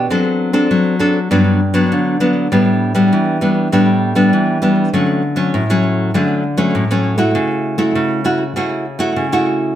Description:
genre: samba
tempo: 99 BPM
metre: 4/4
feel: straight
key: D major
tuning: A4 = 436 Hz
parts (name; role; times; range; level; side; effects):
- nylon-string guitar; solo; 0.0-9.7 s; G2 to A4; -13 LUFS; equal; slapback echo
room: light reverb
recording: close, detailed microphones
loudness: -13 LUFS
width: side -11 dB against mid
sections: 0.0-4.9 A section; 4.9-9.8 B section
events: none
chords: 0.1 D7/F#; 1.3 Gmaj7; 2.5 A9sus4; 4.9 Dmaj7; 7.3 F#m7/C#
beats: | 0.10 0.71 1.31 1.91 | 2.52 3.12 3.72 4.33 | 4.93 5.54 6.14 6.74 | 7.35 7.95 8.56 9.16

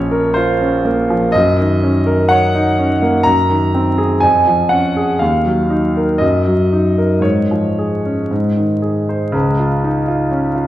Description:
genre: classical, romantic character piece for solo piano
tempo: 56-64 BPM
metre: 2/4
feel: rubato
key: Db major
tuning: A4 = 441 Hz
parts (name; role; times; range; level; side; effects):
- clear concert grand piano; solo; 0.0-10.7 s; Bb1 to Bb5; -12 LUFS; equal; none
room: wet recital hall reverb, RT60 1.6 s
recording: heard from further back in the room, vinyl crackle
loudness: -12 LUFS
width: side -14 dB against mid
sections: 0.0-9.3 A section; 9.3-10.7 B section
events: none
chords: 0.0 Bbm; 1.3 Ebm7/Gb; 3.2 Ab7/Gb; 4.2 Db/F; 5.2 Ebm; 6.2 Ebm/Gb; 7.2 Db/Ab; 8.3 Ab; 9.3 Db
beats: 0.36 | 1.34 2.30 | 3.25 4.22 | 5.20 6.21 | 7.24 8.30 | 9.34 10.31

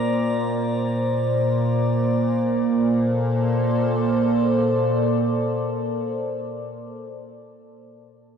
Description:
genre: ambient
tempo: free time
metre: none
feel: none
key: Bb major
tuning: A4 = 442 Hz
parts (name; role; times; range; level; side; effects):
- evolving wavetable pad; sustained chords; 0.0-6.3 s; Bb2 to D5; -20 LUFS; equal; chorus, built-in reverb
- drifting glass-harmonics texture; texture; 0.0-2.5 s; D5 to Bb5; -34 LUFS; left 2 dB; chorus, built-in reverb
room: wet concert hall reverb, RT60 2.6 s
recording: dark, warm production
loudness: -19 LUFS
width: side -7 dB against mid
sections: 0.0-2.5 A section; 2.5-6.7 B section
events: none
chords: 0.0 D7(no3)/Bb; 2.5 Bbmaj7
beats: free time

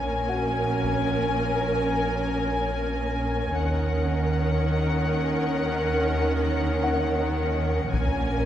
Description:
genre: cinematic, suspense film score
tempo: 55 BPM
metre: 4/4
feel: straight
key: Bb minor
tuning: A4 = 440 Hz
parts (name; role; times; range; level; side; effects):
- warm symphonic violin section; melody; 0.0-8.5 s; Gb5 to Ab5; -32 LUFS; left 5 dB; none
- warm symphonic viola section; accompaniment; 0.0-8.5 s; Db4 to Bb4; -28 LUFS; equal; none
- glass harmonica; sustained chords; 0.0-8.5 s; Bb4 to Ab5; -32 LUFS; equal; none
- warm chamber double bass section; bass; 0.0-8.5 s; Bb1 to Eb2; -28 LUFS; right 1 dB; none
- warm studio cello section; bass; 0.0-8.5 s; Bb2 to Eb3; -30 LUFS; right 1 dB; none
- clear grand piano; texture; 0.3-8.5 s; Gb4 to Gb5; -36 LUFS; left 2 dB; none
- taiko ensemble; drums; 0.8-1.3, 7.9-8.5 s; none; -30 LUFS; left 1 dB; none
room: wet concert hall reverb, RT60 2.2 s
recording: heard from further back in the room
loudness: -22 LUFS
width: side -11 dB against mid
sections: 0.0-8.5 A section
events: none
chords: 0.0 Bbm7; 3.6 Ebm7; 7.9 Bbm7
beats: 0.29 1.38 2.47 | 3.56 4.66 5.75 6.84 | 7.93

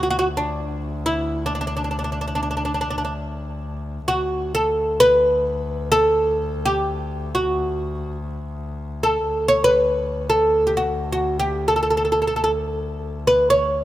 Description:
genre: Arabic maqam ensemble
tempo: free time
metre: none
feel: none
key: D maqam ajam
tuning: A4 = 440 Hz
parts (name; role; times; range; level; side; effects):
- oud; melody; 0.0-13.8 s; D4 to C#5; -19 LUFS; equal; none
- clear double bass; drone; 0.0-13.8 s; D2; -28 LUFS; left 2 dB; stereo widening
room: moderate plate reverb, RT60 3.2 s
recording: rough home demo mix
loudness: -19 LUFS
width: side -14 dB against mid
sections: 0.0-13.8 A section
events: none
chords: none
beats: free time

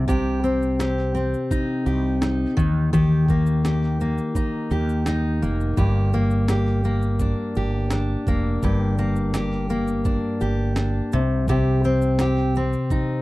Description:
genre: acoustic pop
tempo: 84 BPM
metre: 4/4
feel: straight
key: G minor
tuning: A4 = 439 Hz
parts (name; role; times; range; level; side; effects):
- fingerpicked steel-string acoustic guitar; accompaniment; 0.0-13.2 s; G2 to G4; -21 LUFS; left 1 dB; none
- mellow fretless electric bass; bass; 0.0-12.7 s; F1 to Eb2; -24 LUFS; right 1 dB; lush chorus
- breakbeat sampler-style drum kit; drums; 0.1-13.1 s; kick drum, shaker, snare drum; -26 LUFS; right 1 dB; none
room: little or no reverb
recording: dry, close 1970s-style studio recording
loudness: -19 LUFS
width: side -18 dB against mid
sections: 0.0-13.2 A section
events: none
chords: 0.0 Cm; 2.6 Eb; 5.8 Gm; 11.1 Cm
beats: | 0.08 0.80 1.51 2.22 | 2.93 3.64 4.36 5.07 | 5.78 6.49 7.20 7.92 | 8.63 9.34 10.05 10.77 | 11.48 12.19 12.90

